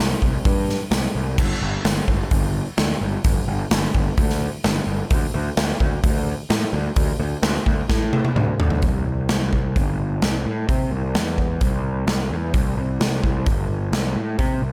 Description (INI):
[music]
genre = quiet-loud alternative rock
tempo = 129 BPM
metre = 4/4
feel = straight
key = C major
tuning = A4 = 440 Hz
[part]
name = fuzz picked electric bass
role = bass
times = 0.0-14.7 s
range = G1 to C3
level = -25 LUFS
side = equal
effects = overdrive
[part]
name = big rock drum kit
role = drums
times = 0.2-14.5 s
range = crash cymbal, hi-hat, kick drum, snare drum, toms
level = -24 LUFS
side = equal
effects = none
[sound]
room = light reverb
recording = none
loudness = -21 LUFS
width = mono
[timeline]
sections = 0.0-8.8 A section; 8.8-14.7 B section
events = drum fill 7.9-8.8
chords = none